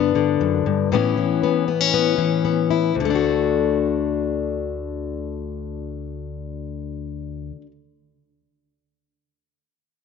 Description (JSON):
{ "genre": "folk", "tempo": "118 BPM", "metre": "4/4", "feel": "straight", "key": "D major", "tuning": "A4 = 440 Hz", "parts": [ { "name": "fingerpicked plugged-in steel-string acoustic guitar", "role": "accompaniment", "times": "0.0-7.7 s", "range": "D2 to F#4", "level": "-20 LUFS", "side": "left 8 dB", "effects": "none" } ], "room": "moderate plate reverb, RT60 2.5 s", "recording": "1960s-style stereo, nothing above 7.7 kHz", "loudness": "-19 LUFS", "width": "side -5 dB against mid", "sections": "0.0-2.9 A section; 2.9-7.0 B section", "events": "none", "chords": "0.0 G; 0.9 Aadd9; 2.9 D" }